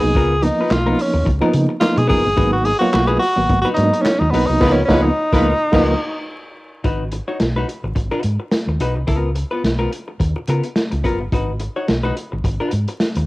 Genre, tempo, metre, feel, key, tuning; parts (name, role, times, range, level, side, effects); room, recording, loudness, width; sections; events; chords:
funk; 107 BPM; 4/4; swing 56% on 16ths; G# dorian; A4 = 440 Hz
breathy tenor saxophone; melody; 0.0-6.4 s; B3 to G#4; -18 LUFS; equal
vintage hollow-body jazz guitar; accompaniment; 0.0-13.2 s; B3 to C#5; -24 LUFS; left 2 dB
reed electric piano; stabs; 0.0-5.9 s; E#3 to F#4; -19 LUFS; right 1 dB; fast tremolo
hollow-body short-scale fingered electric bass; bass; 0.0-13.3 s; F#1 to C#3; -20 LUFS; equal
vintage drum kit; drums; 0.2-13.3 s; crash cymbal, handclaps, hi-hat, kick drum, snare drum; -22 LUFS; equal; cassette tape
clear horn section; second line; 4.6-5.9 s; G#3 to B4; -26 LUFS; right 1 dB
light reverb, studio reverb; home recording on cassette, vinyl crackle; -15 LUFS; side -20 dB against mid
0.0-6.8 A section; 6.8-13.3 B section
tenor saxophone solo 0.0-6.8; band accent 4.6-6.8
0.2 C#13; 2.4 G#m7; 4.6 C#13; 6.8 G#m7; 9.1 C#13; 11.3 G#m7